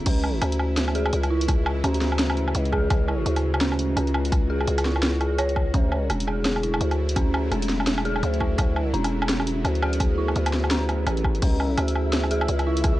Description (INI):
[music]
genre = half-time drum and bass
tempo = 169 BPM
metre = 4/4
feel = swing 59% on 16ths, half-time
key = C# phrygian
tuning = A4 = 440 Hz
[part]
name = bowed-like drone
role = sustained chords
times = 0.0-13.0 s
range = C#3 to F#4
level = -34 LUFS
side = equal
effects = built-in reverb, sidechain pumping
[part]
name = dark detuned synth bell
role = arpeggios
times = 0.0-13.0 s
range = C#4 to C#5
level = -28 LUFS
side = right 1 dB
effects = chorus, phaser, tape echo
[part]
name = growling 808-style bass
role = bass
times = 0.0-13.0 s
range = E1 to D2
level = -24 LUFS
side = equal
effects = none
[part]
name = drum and bass drum kit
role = drums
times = 0.1-12.9 s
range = crash cymbal, hi-hat, snare drum, woodblock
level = -27 LUFS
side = equal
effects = none
[part]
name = electronic kick drum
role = drums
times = 0.1-12.9 s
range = none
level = -23 LUFS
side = equal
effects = none
[part]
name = flickering grainy texture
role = texture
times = 11.6-13.0 s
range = E5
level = -34 LUFS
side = right 1 dB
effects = built-in reverb
[sound]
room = little or no reverb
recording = dry, gritty hardware recording, cassette tape, nothing above 10.7 kHz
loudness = -21 LUFS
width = side -16 dB against mid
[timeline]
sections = 0.1-13.0 A section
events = drop 0.1-13.0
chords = 0.1 C#m; 5.7 Dadd9; 11.4 C#m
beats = | 0.06 0.42 0.77 1.13 | 1.48 1.84 2.19 2.55 | 2.90 3.26 3.61 3.97 | 4.32 4.68 5.03 5.39 | 5.74 6.10 6.45 6.81 | 7.16 7.52 7.87 8.23 | 8.58 8.94 9.29 9.65 | 10.00 10.36 10.71 11.07 | 11.42 11.78 12.13 12.49 | 12.84